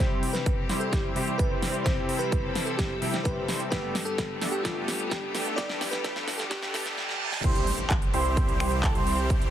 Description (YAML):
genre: EDM, festival progressive house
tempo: 129 BPM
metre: 4/4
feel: straight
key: C major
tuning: A4 = 439 Hz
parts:
  - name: bell-like FM electric piano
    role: melody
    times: 0.0-6.9 s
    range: F4 to D5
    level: -35 LUFS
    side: equal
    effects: chorus, tremolo, tape echo
  - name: bright grand piano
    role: accompaniment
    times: 0.0-7.5 s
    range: G2 to G4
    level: -35 LUFS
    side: left 3 dB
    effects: sidechain pumping, tape echo
  - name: bright studio string section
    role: sustained chords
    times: 0.0-9.5 s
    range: D3 to A4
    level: -38 LUFS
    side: left 2 dB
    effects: sidechain pumping
  - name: supersaw chords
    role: riff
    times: 0.0-9.5 s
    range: G3 to E5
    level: -32 LUFS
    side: right 1 dB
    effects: sidechain pumping, low-pass filter, tape echo
  - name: big-room dance drum kit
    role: drums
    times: 0.0-9.5 s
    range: crash cymbal, finger snaps, handclaps, hi-hat, snare drum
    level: -33 LUFS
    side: right 1 dB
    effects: none
  - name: electronic kick drum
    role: drums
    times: 0.0-9.4 s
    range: none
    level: -27 LUFS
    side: equal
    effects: none
  - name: riser, reverse cymbal and impact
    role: sound effects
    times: 2.8-9.3 s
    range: none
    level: -38 LUFS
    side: right 2 dB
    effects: none
  - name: warm concert grand piano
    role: arpeggios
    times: 7.4-9.5 s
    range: A5 to C6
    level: -32 LUFS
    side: right 3 dB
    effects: sidechain pumping, tape echo
  - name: wide detuned saw bass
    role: bass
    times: 7.4-9.5 s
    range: C2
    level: -30 LUFS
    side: equal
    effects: chorus, sidechain pumping
room: light reverb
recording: heavily compressed radio sound, multiband compression, high-pass filter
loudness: -25 LUFS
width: side -11 dB against mid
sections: 0.0-7.4 A section; 7.4-9.5 B section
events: build-up 0.0-7.4; drum fill 0.0-7.0, 7.0-7.4; filter sweep on supersaw synth 0.0-7.4; filter sweep 0.0-7.4; reverse cymbal 6.5-7.4; drop 7.4-9.5; impact 7.4-9.3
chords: 0.0 C; 3.7 Gadd9; 7.4 C